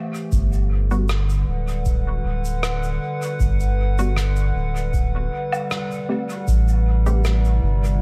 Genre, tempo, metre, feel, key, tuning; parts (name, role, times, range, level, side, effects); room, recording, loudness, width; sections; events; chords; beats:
ambient dub; 78 BPM; 4/4; swing 53% on 16ths; A4 = 440 Hz
warbly tape-like pad; sustained chords; 0.0-8.0 s; C3 to F#5; -30 LUFS; equal; chorus, built-in reverb
shaker, rim click and woodblock; drums; 0.1-8.0 s; -34 LUFS; equal; dub echo
soft dub sub bass; bass; 0.3-8.0 s; D1 to A1; -22 LUFS; equal; tube saturation
electronic kick drum; drums; 0.3-6.6 s; -26 LUFS; equal
filtered dub chord stab; stabs; 0.9-7.2 s; G3 to G4; -31 LUFS; equal; phaser, analog chorus, dub echo
little or no reverb; echo-heavy mix; -21 LUFS; mono
0.0-8.0 A section
0.3 Gmaj7; 6.5 Am7
| 0.32 1.09 1.86 2.63 | 3.40 4.17 4.94 5.71 | 6.48 7.25 8.02